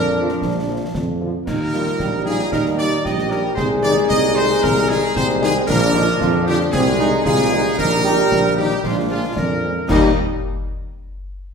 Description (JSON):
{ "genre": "military-style march for wind band", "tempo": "114 BPM", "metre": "2/4", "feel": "straight", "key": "Eb major", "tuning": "A4 = 437 Hz", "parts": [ { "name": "clear trumpet section", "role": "melody", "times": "0.0-10.1 s", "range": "F4 to Eb5", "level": "-21 LUFS", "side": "equal", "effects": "none" }, { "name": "clear euphonium", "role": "second line", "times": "0.0-9.6 s", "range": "C4 to Ab4", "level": "-22 LUFS", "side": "equal", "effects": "none" }, { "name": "bright trombone section", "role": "sustained chords", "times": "0.0-10.1 s", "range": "F3 to Eb4", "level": "-25 LUFS", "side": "right 1 dB", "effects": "none" }, { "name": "mellow tuba", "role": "bass", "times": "0.0-10.1 s", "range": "Bb1 to F2", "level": "-21 LUFS", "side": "right 1 dB", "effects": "none" }, { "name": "mellow French horn section", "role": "accompaniment", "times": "0.2-10.1 s", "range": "D3 to F4", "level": "-26 LUFS", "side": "left 4 dB", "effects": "none" }, { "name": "concert snare drum, concert bass drum and clash cymbals", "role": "drums", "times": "0.3-10.2 s", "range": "none", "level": "-27 LUFS", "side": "left 2 dB", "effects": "none" } ], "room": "wet recital hall reverb, RT60 1.3 s", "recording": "recorded in a church or concert hall", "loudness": "-15 LUFS", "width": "side -6 dB against mid", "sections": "0.0-9.9 A section; 9.9-10.9 B section", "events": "none", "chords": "0.0 Bb; 1.5 Eb; 3.6 Ab/C; 5.7 Bb; 6.7 Ab/C; 7.8 Eb/Bb; 8.8 Bb7; 9.9 Eb", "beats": "| 0.42 0.94 | 1.47 2.00 | 2.52 3.05 | 3.58 4.10 | 4.63 5.16 | 5.68 6.21 | 6.73 7.26 | 7.79 8.31 | 8.84 9.36 | 9.89" }